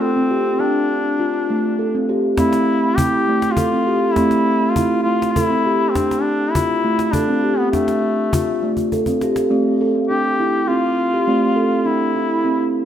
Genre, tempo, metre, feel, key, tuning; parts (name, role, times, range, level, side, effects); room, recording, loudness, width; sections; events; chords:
world meditative, meditative tuned percussion; 101 BPM; 3/4; straight; A minor; A4 = 439 Hz
warm duduk; melody; 0.0-12.7 s; A3 to G4; -20 LUFS; left 2 dB
steel tongue drum; arpeggios; 0.0-12.7 s; A3 to A4; -17 LUFS; right 1 dB; diffuse ambient delay
cajon; percussion; 2.4-9.5 s; -24 LUFS; left 1 dB
wet echo chamber reverb, RT60 1.8 s, small room ambience; -15 LUFS; side -10 dB against mid
0.0-9.5 A section; 9.5-12.8 B section
drum fill 8.8-9.5
0.0 Dm; 2.4 Am; 5.9 Dm; 9.5 Am